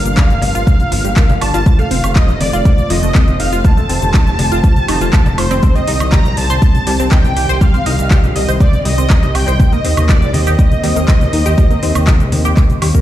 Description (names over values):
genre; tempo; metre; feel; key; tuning
progressive house; 121 BPM; 4/4; straight; unclear; A4 = 439 Hz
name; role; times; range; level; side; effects
wide unison lead; melody; 0.0-13.0 s; C5 to Bb5; -21 LUFS; equal; ensemble chorus, ping-pong delay
soft supersaw; second line; 0.0-13.0 s; C5 to Bb5; -27 LUFS; right 1 dB; cassette tape, sidechain pumping, ping-pong delay
warm analog pad; sustained chords; 0.0-13.0 s; Eb3 to Eb5; -23 LUFS; right 1 dB; chorus, sidechain pumping
dark detuned saw bass; bass; 0.0-13.0 s; Eb1 to Eb2; -16 LUFS; equal; sidechain pumping
deep house drum kit; drums; 0.1-13.0 s; handclaps, hi-hat, shaker, woodblock; -22 LUFS; equal; overdrive
congas and cowbell; percussion; 0.1-12.8 s; none; -23 LUFS; left 2 dB; none
tight sequenced synth; arpeggios; 0.2-13.0 s; F3 to C6; -22 LUFS; equal; chorus, phaser, sidechain pumping, ping-pong delay
electronic kick drum; drums; 0.2-13.0 s; none; -10 LUFS; equal; overdrive
room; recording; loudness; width
digital ambience; played on a big sound system in a bare room, large studio reverb; -10 LUFS; side -13 dB against mid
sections
0.0-13.0 A section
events
none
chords
0.0 Gm7; 1.7 F7; 5.6 Cm; 9.6 Eb6